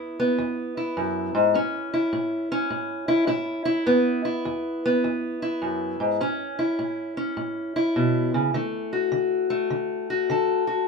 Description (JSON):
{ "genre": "blues", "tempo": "103 BPM", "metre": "4/4", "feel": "swing 65% on 8ths", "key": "A major", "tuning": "A4 = 440 Hz", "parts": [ { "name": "fingerpicked steel-string acoustic guitar", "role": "solo", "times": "0.0-10.9 s", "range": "E2 to A4", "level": "-22 LUFS", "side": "left 1 dB", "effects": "none" } ], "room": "moderate studio reverb, RT60 0.6 s", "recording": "minimal, uncompressed stereo recording", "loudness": "-22 LUFS", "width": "side -4 dB against mid", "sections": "0.0-6.2 A section; 6.2-10.9 B section", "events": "none", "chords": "0.0 E; 1.6 A; 3.9 E5; 6.2 A; 8.5 D" }